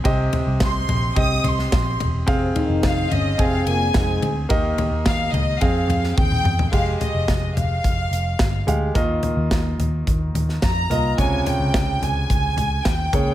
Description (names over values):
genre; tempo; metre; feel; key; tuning
piano-driven pop; 108 BPM; 4/4; straight; F minor; A4 = 442 Hz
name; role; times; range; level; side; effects
clear concert grand piano; accompaniment; 0.0-13.3 s; C3 to Ab5; -25 LUFS; right 1 dB; none
vintage muted picked electric bass; bass; 0.1-13.3 s; E1 to F2; -23 LUFS; equal; none
modern studio drum kit; drums; 0.1-13.3 s; crash cymbal, hi-hat, kick drum, ride cymbal, snare drum, toms; -22 LUFS; equal; none
clear studio violin section; melody; 0.6-13.3 s; Eb5 to Eb6; -25 LUFS; equal; none
mellow French horn section; second line; 2.3-4.3 s; Ab2 to Eb4; -26 LUFS; left 3 dB; none
room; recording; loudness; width
light reverb, studio ambience; none; -18 LUFS; side -13 dB against mid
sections
0.0-6.7 A section; 6.7-13.3 B section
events
drum fill 6.2-6.7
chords
0.1 Cm; 2.3 Fm; 4.5 Eb; 5.6 Fm; 6.7 Fmadd9; 9.0 Ebsus2; 11.2 Dbmaj7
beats
| 0.05 0.61 1.16 1.72 | 2.28 2.83 3.39 3.94 | 4.50 5.06 5.61 6.17 | 6.73 7.28 7.84 8.40 | 8.95 9.51 10.07 10.62 | 11.18 11.74 12.29 12.85